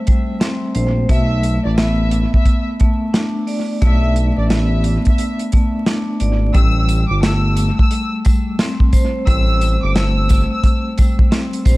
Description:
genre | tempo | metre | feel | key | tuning
hip hop, boom-bap hip-hop | 88 BPM | 4/4 | swing 63% on 16ths | A minor | A4 = 440 Hz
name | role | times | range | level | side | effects
vibraphone with hard mallets | accompaniment | 0.0-11.8 s | G3 to D5 | -21 LUFS | equal | high-pass filter, low-pass filter, analog delay
warm soul drum kit | drums | 0.1-11.8 s | hi-hat, kick drum, snare drum | -15 LUFS | equal | none
smooth synth bass | bass | 0.8-11.8 s | G1 to B1 | -16 LUFS | equal | none
warm studio violin section | melody | 1.1-10.8 s | D5 to E6 | -25 LUFS | equal | high-pass filter, low-pass filter, analog delay
tambourine | percussion | 6.9-11.8 s | none | -39 LUFS | left 3 dB | analog delay
room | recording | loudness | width
small room reverb | echo-heavy mix, vinyl crackle | -14 LUFS | side -20 dB against mid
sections
0.0-6.5 A section; 6.5-11.8 B section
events
none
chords
0.0 Am7; 1.1 Bm7; 6.5 Am7

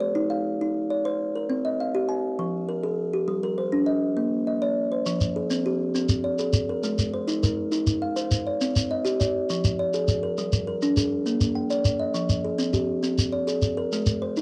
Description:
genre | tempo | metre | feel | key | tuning
southern african traditional, mbira-style interlocking cycle | 135 BPM (dotted quarters) | 12/8 | straight | F equiheptatonic | A4 = 440 Hz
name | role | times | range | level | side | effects
kalimba | arpeggios | 0.0-14.4 s | F3 to Ab5+43c | -26 LUFS | equal | cassette tape
shekere | percussion | 5.1-14.4 s | none | -29 LUFS | equal | none
room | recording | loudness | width
moderate studio reverb, RT60 0.5 s | home recording on cassette | -25 LUFS | mono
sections
0.0-5.1 A section; 5.1-14.4 A section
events
none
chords
0.0 Ab (rootless); 1.5 Cm; 2.4 Fm; 3.3 Gm; 4.2 Bb; 5.1 Fm; 6.8 Ab; 8.6 Cm; 9.5 Fm; 10.4 Gm; 11.3 Bb; 12.2 Fm

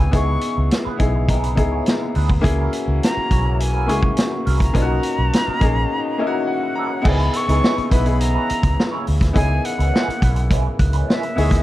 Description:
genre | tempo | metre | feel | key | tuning
lush 1970s-style soul | 104 BPM | 4/4 | straight | C# dorian | A4 = 440 Hz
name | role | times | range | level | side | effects
jazz flute | melody | 0.0-11.6 s | E5 to C#6 | -25 LUFS | equal | none
bright baby grand piano | accompaniment | 0.0-11.6 s | A#3 to A#5 | -24 LUFS | left 2 dB | none
clear French horn section | sustained chords | 0.0-11.6 s | B2 to A#4 | -31 LUFS | left 3 dB | none
electric guitar through a small old amp | riff | 0.0-11.6 s | F#3 to C#5 | -31 LUFS | right 5 dB | wah
vintage muted fingered electric bass | bass | 0.0-11.6 s | A#1 to D2 | -19 LUFS | equal | none
glockenspiel with soft plastic mallets | texture | 0.0-11.6 s | A#5 to F#6 | -36 LUFS | equal | none
vintage drum kit | drums | 0.1-11.6 s | crash cymbal, hi-hat, kick drum, snare drum | -20 LUFS | equal | none
room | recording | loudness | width
light reverb, small room ambience | dark, warm production | -16 LUFS | side -15 dB against mid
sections
0.0-7.0 A section; 7.0-11.6 B section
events
break 5.9-7.0; grand piano fill 5.9-7.0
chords
0.0 C#m7; 2.4 F#7; 4.7 Bmaj7; 7.0 C#m7

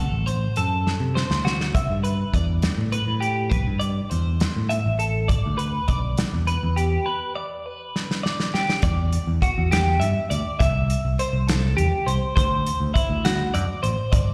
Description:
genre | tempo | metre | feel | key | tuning
math rock and midwest emo | 68 BPM (dotted quarters) | 6/8 | straight | G major | A4 = 440 Hz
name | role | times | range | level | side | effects
twelve-string electric guitar | arpeggios | 0.0-14.3 s | E4 to E5 | -28 LUFS | equal | lush chorus, slapback echo
picked electric bass | bass | 0.0-14.3 s | G1 to C3 | -25 LUFS | equal | none
loose indie drum kit | drums | 0.3-14.3 s | hi-hat, kick drum, snare drum | -27 LUFS | equal | none
room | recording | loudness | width
little or no reverb | live gig heard through the venue's PA, recital hall reverb | -23 LUFS | mono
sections
0.0-8.8 A section; 8.8-14.3 B section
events
drum fill 0.8-1.7, 7.9-8.8; break 7.1-8.8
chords
0.0 D7; 1.7 Cmaj7; 5.3 G; 8.8 Em7; 10.6 C; 12.4 D7

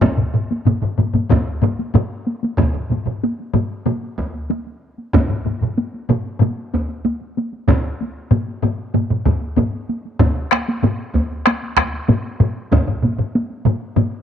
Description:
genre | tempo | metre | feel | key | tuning
japanese traditional, taiko drum ensemble | 95 BPM | 4/4 | straight | none | none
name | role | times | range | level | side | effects
taiko ensemble | percussion | 0.0-14.2 s | none | -22 LUFS | right 1 dB | none
taiko ensemble | percussion | 0.0-14.1 s | none | -20 LUFS | left 4 dB | none
taiko ensemble | percussion | 0.0-14.1 s | none | -21 LUFS | right 6 dB | none
taiko ensemble | percussion | 0.0-12.9 s | none | -19 LUFS | right 1 dB | none
room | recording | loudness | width
light reverb | 1960s-style stereo | -17 LUFS | side -9 dB against mid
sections
0.0-2.6 A section; 2.6-14.2 B section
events
speeding up 0.0-14.2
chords
none

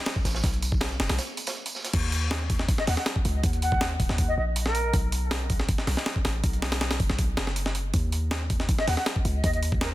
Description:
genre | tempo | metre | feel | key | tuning
drum and bass, jungle | 160 BPM | 4/4 | straight | Eb minor | A4 = 444 Hz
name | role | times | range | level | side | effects
breakbeat sampler-style drum kit | drums | 0.1-9.9 s | crash cymbal, hi-hat, kick drum, snare drum | -26 LUFS | equal | small room ambience
tambourine and snare drum | drums | 0.1-1.9 s | none | -35 LUFS | right 3 dB | high-pass filter on hats, small room ambience, high-pass filter on snare, high-pass filter on perc, high-pass filter on room
warm 808-style bass | bass | 0.2-9.9 s | Eb1 to Eb2 | -28 LUFS | equal | tube saturation
mellow silver concert flute | melody | 2.8-4.9, 8.8-9.9 s | Bb4 to Gb5 | -31 LUFS | equal | vintage 12-bit sampler grit, dub echo
room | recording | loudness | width
studio reverb | dense, heavily limited modern master | -24 LUFS | side -16 dB against mid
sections
0.0-1.9 A section; 1.9-9.9 A section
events
drop 0.0-1.9, 1.9-9.9; break 1.2-1.9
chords
0.0 B5; 1.9 Eb5; 4.9 B5; 7.9 Eb5

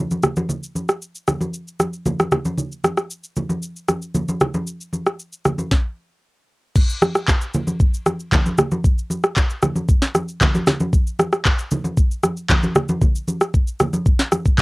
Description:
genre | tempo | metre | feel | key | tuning
amapiano | 115 BPM | 4/4 | straight | none | none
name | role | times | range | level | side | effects
afro-pop drum kit | drums | 0.1-14.6 s | crash cymbal, handclaps, kick drum, rim click, shaker, snare drum | -17 LUFS | equal | none
congas | percussion | 0.1-14.6 s | none | -22 LUFS | equal | none
room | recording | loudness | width
light reverb | home recording on cassette | -18 LUFS | side -24 dB against mid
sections
0.0-6.8 A section; 6.8-14.6 B section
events
none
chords
none

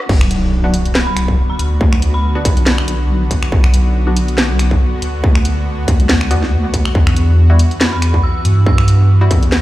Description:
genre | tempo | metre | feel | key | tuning
deep dubstep | 140 BPM | 4/4 | swing 55% on 16ths, half-time | B minor | A4 = 441 Hz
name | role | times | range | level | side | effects
bowed-like drone | sustained chords | 0.0-9.6 s | D3 to F#4 | -24 LUFS | left 1 dB | built-in reverb
garage drum kit | drums | 0.0-9.6 s | crash cymbal, finger snaps, hi-hat, rim click, snare drum | -19 LUFS | equal | high-pass filter on snare, high-pass filter on hats, high-pass filter on cymbals, high-pass filter on room
deep soft wobble bass | bass | 0.1-9.6 s | B1 to G2 | -13 LUFS | equal | chorus, high-pass filter
electronic kick drum | drums | 0.1-9.4 s | none | -14 LUFS | equal | distortion
impact | sound effects | 0.1-1.8 s | none | -23 LUFS | equal | none
filtered dub chord stab | stabs | 0.6-9.3 s | G3 to F#4 | -26 LUFS | left 1 dB | lush chorus, dub echo
dark detuned synth bell | melody | 1.0-2.7, 7.8-9.0 s | B5 to E6 | -25 LUFS | right 2 dB | chorus, phaser, dub echo
room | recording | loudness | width
digital ambience | played on a big sound system in a bare room, large studio reverb, high-pass filter | -11 LUFS | side -16 dB against mid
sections
0.1-9.6 A section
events
drop 0.1-9.6; impact 0.1-1.8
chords
0.1 Bm; 7.0 Emadd9

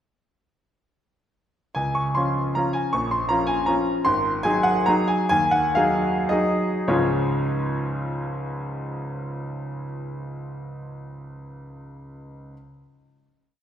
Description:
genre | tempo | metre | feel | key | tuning
classical, piano waltz | 97-165 BPM | 3/4 | rubato | Db major | A4 = 439 Hz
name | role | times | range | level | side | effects
bright concert grand piano | solo | 1.7-12.5 s | Ab1 to Db6 | -22 LUFS | equal | none
room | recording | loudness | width
wet scoring stage reverb, RT60 1.7 s | recorded in a church or concert hall | -21 LUFS | side -10 dB against mid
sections
1.8-6.9 A section; 6.9-10.3 final chord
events
slowing down 3.5-6.9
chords
1.8 Db; 3.0 Bbm; 4.1 Ab7; 6.9 Db

